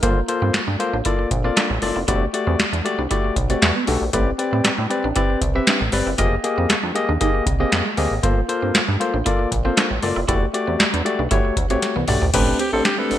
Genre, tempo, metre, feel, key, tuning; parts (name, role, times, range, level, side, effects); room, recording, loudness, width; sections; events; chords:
early-eighties boogie funk; 117 BPM; 4/4; straight; A minor; A4 = 442 Hz
barky tine electric piano; accompaniment; 0.0-13.2 s; A3 to E5; -22 LUFS; left 3 dB
electric guitar at the edge of break-up; riff; 0.0-13.0 s; Ab3 to F4; -28 LUFS; right 4 dB; analog chorus
chorused synth bass; bass; 0.0-13.2 s; E1 to A2; -23 LUFS; equal
booming analog drum machine; drums; 0.0-13.2 s; crash cymbal, handclaps, hi-hat, kick drum, snare drum, toms; -21 LUFS; equal; gated reverb
raspy alto saxophone; melody; 12.6-13.2 s; G4 to A4; -22 LUFS; equal
light reverb; bright 1980s-style digital production; -17 LUFS; side -11 dB against mid
0.0-12.3 A section
drum fill 11.8-12.3
0.0 Gm11; 2.1 Em11; 4.1 Am11; 6.2 Fm11; 8.2 Gm11; 10.3 Em11; 12.3 Am11